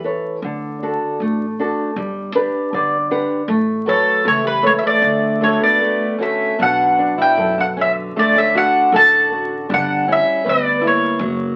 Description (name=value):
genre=fado-style ballad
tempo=78 BPM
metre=2/4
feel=rubato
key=D major, B minor from 6.6 s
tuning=A4 = 440 Hz
part: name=flamenco guitar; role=accompaniment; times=0.0-11.6 s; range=B2 to F#5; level=-23 LUFS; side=equal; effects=none
part: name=upright bass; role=bass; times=0.0-11.6 s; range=F#1 to F#2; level=-32 LUFS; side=equal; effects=none
part: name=mandolin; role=melody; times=3.9-11.6 s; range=A4 to A5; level=-17 LUFS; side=equal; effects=none
part: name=fingerpicked twelve-string acoustic guitar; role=second line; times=3.9-11.6 s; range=F#3 to F#4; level=-24 LUFS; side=equal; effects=none
room=moderate studio reverb, RT60 0.9 s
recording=very old 78 rpm record, vinyl crackle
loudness=-17 LUFS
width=mono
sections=0.0-6.6 A section; 6.6-11.6 B section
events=nylon-string guitar fill 2.0-3.5; break 5.8-6.6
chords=0.4 D; 2.0 G; 3.5 Aadd9; 5.0 D; 6.6 Bm7; 8.2 D; 9.7 G6